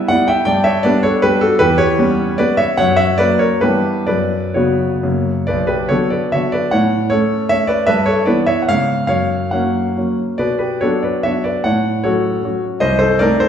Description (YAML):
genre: classical, romantic triple-time dance for piano with dotted rhythms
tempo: 121-167 BPM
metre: 3/4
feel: rubato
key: unclear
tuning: A4 = 440 Hz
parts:
  - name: warm concert grand piano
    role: solo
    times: 0.0-13.5 s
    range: B1 to G5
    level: -13 LUFS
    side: equal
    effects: none
room: wet large studio reverb, RT60 1.4 s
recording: heard from further back in the room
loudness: -13 LUFS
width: side -8 dB against mid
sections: 0.0-5.5 A section; 5.5-13.5 B section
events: none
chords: 0.5 G; 1.6 C#m7b5/E; 2.8 F#; 3.6 Em/G; 4.1 F#sus4; 5.0 F#; 5.5 Bm; 6.7 F#m/A; 7.9 Em/G; 8.7 C#7/G#; 9.1 F#; 10.4 Bm; 11.6 F#m/A; 12.8 Adim/C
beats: 0.11 | 0.48 0.86 1.25 | 1.61 2.00 2.40 | 2.78 3.19 3.63 | 4.08 4.57 5.04 | 5.49 5.92 6.34 | 6.73 7.12 7.52 | 7.89 8.28 8.69 | 9.10 9.52 9.97 | 10.40 10.83 11.25 | 11.65 12.04 12.45 | 12.82 13.21